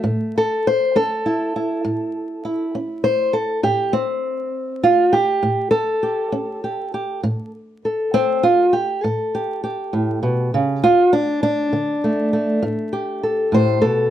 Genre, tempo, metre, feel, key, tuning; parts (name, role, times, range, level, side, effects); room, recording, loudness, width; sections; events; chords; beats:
acoustic country blues, solo or duo; 67 BPM (dotted quarters); 12/8; straight; A4 = 440 Hz
fingerpicked old ladder-braced acoustic guitar; solo; 0.0-14.1 s; D2 to C5; -17 LUFS; equal
moderate studio reverb, RT60 0.6 s; dark, warm production, vinyl crackle; -17 LUFS; side -11 dB against mid
0.0-14.1 A section
steel-string acoustic guitar solo 0.0-14.1
0.0 A7; 10.8 D5; 12.6 A7(no3)
| 0.04 0.94 1.84 2.73 | 3.63 4.53 5.43 6.33 | 7.23 8.12 9.02 9.92 | 10.82 11.72 12.62 13.52